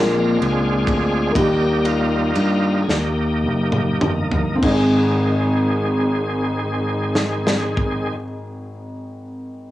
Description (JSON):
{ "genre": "slow gospel", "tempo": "32-44 BPM (dotted quarters)", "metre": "6/8", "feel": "straight", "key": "Ab major", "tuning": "A4 = 439 Hz", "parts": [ { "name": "dark grand piano", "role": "accompaniment", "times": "0.0-9.7 s", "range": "Ab1 to Bb4", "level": "-22 LUFS", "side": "left 1 dB", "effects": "cassette tape" }, { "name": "bright tonewheel organ", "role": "sustained chords", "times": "0.0-8.2 s", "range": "Eb3 to Bb4", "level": "-22 LUFS", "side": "right 1 dB", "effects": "slow rotary speaker, overdrive, chorus vibrato, cassette tape" }, { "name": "fingered electric bass", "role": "bass", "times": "0.0-8.1 s", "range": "Gb1 to G2", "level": "-22 LUFS", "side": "equal", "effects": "none" }, { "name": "modern studio drum kit", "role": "drums", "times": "0.4-8.1 s", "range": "crash cymbal, kick drum, ride cymbal, snare drum, toms", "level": "-24 LUFS", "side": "equal", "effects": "cassette tape" } ], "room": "light reverb, studio ambience", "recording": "home recording on cassette, small room ambience", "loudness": "-17 LUFS", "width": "side -14 dB against mid", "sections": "0.0-4.6 A section; 4.6-8.4 B section", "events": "slowing down 0.0-4.6; tonewheel organ solo 0.0-4.6; drum fill 2.9-4.6", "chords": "0.0 Bb7; 1.4 Eb; 4.6 Ab", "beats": "| 1.36 2.89 | 4.63 6.51" }